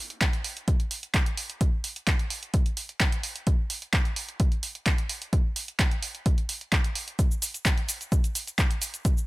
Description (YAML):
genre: house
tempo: 129 BPM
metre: 4/4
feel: straight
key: none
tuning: none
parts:
  - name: punchy analog drum machine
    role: drums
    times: 0.1-9.3 s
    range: handclaps, hi-hat, shaker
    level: -29 LUFS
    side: right 1 dB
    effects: none
  - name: electronic kick drum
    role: drums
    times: 0.2-9.1 s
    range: none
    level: -24 LUFS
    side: equal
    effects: none
room: little or no reverb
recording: none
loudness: -24 LUFS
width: side -20 dB against mid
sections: 0.0-9.3 A section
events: none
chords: none